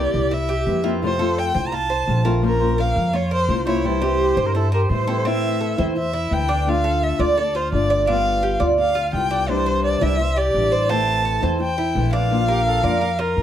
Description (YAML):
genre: latin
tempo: 170 BPM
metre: 4/4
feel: straight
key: unclear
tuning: A4 = 439 Hz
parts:
  - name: dark violin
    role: melody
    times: 0.0-13.4 s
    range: Bb4 to Bb5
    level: -22 LUFS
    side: left 1 dB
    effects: none
  - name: flamenco guitar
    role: accompaniment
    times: 0.0-13.4 s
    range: C3 to C5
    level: -25 LUFS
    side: left 3 dB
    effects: none
  - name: Cuban tres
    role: arpeggios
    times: 0.0-13.4 s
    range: C4 to D5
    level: -25 LUFS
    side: right 3 dB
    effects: none
  - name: upright bass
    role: bass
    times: 0.0-13.4 s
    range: G1 to A2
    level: -23 LUFS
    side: equal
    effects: none
  - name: breathy bright concert flute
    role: second line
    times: 4.2-5.3, 12.5-13.1 s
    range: G4 to C5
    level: -28 LUFS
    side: right 5 dB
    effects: none
room: light reverb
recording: none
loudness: -17 LUFS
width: side -10 dB against mid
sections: 0.0-5.3 A section; 5.3-13.4 B section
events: none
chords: 0.0 C7; 1.0 F; 2.4 Bbmadd9; 3.8 C; 5.3 Am; 6.7 Dm; 8.1 G7; 9.5 Cadd9; 10.9 Am; 12.3 Bb